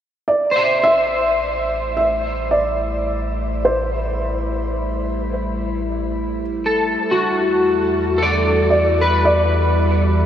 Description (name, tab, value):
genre	ambient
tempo	54 BPM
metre	3/4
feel	straight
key	A dorian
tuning	A4 = 440 Hz
part	felt-muted upright piano	melody	0.3-10.3 s	C5 to E5	-20 LUFS	equal	shimmer reverb, tape echo
part	evolving wavetable pad	sustained chords	1.8-10.3 s	E3 to B5	-25 LUFS	left 1 dB	chorus, built-in reverb, shimmer reverb
part	warm sub bass	bass	0.3-10.3 s	A1 to E2	-23 LUFS	equal	none
part	electric guitar at the edge of break-up	arpeggios	0.5-10.3 s	F#4 to E5	-19 LUFS	equal	ensemble chorus, shimmer reverb, tape echo
room	wet huge ambient reverb, RT60 7.3 s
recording	dark, warm production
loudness	-16 LUFS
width	side -10 dB against mid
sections	0.3-10.3 A section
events	fade-in on ambient pad 0.3-10.3; fade-in on sub bass 0.3-10.3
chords	0.3 Am9; 7.0 Em9